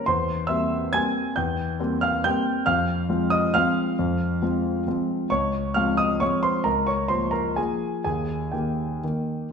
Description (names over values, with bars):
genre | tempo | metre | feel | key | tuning
classical, piano waltz | 119-146 BPM | 3/4 | rubato | unclear | A4 = 438 Hz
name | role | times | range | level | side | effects
warm concert grand piano | solo | 0.0-9.5 s | Db2 to Ab6 | -22 LUFS | equal | none
room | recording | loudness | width
wet scoring stage reverb, RT60 1.6 s | minimal, uncompressed stereo recording | -22 LUFS | side -6 dB against mid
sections
0.0-9.5 A section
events
none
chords
0.1 C7/E; 2.7 Fm7; 5.3 Dbmaj7; 6.7 Bbm/Db; 8.1 Eb